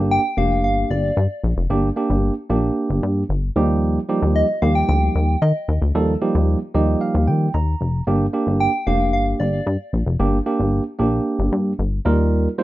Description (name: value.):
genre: dance-pop.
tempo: 113 BPM.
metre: 4/4.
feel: straight.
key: G minor.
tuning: A4 = 440 Hz.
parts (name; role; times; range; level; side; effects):
tine electric piano; accompaniment; 0.0-12.6 s; F3 to Bb5; -21 LUFS; right 3 dB; none.
plucky analog bass; bass; 0.0-12.5 s; F1 to Eb3; -19 LUFS; left 1 dB; none.
soft struck synth lead; melody; 0.1-9.9 s; D5 to G5; -21 LUFS; equal; chorus.
room: moderate studio reverb, RT60 0.6 s.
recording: rough home demo mix, nothing above 7.5 kHz.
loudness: -17 LUFS.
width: side -16 dB against mid.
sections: 0.0-12.6 A section.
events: tine electric piano fill 6.5-8.1.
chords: 0.0 Gm; 3.6 Ebadd9; 8.1 Gm; 12.1 Ebadd9.